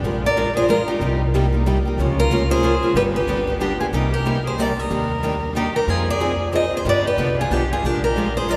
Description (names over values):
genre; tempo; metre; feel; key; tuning
acoustic string swing (jazz manouche); 185 BPM; 3/4; swing 59% on 8ths; C minor; A4 = 438 Hz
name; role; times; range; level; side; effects
picked steel-string acoustic guitar; accompaniment; 0.0-8.6 s; C3 to Bb4; -26 LUFS; equal; none
picked steel-string acoustic guitar; accompaniment; 0.0-8.6 s; C3 to Bb4; -30 LUFS; equal; none
upright bass; bass; 0.0-8.6 s; G1 to G2; -26 LUFS; equal; none
picked steel-string acoustic guitar; melody; 0.3-8.6 s; G4 to Eb5; -25 LUFS; equal; none
clear violin; second line; 0.3-8.6 s; D4 to C5; -30 LUFS; equal; none
room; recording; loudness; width
wet cathedral reverb, RT60 5.5 s; recorded in a church or concert hall; -20 LUFS; mono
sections
0.0-3.9 A section; 3.9-8.6 B section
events
none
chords
0.0 Bb7; 1.0 Cm7; 2.0 Db6; 3.0 G; 3.9 Cm7; 4.9 Ebmaj7; 5.9 Fm7; 6.9 G7; 7.8 Bb6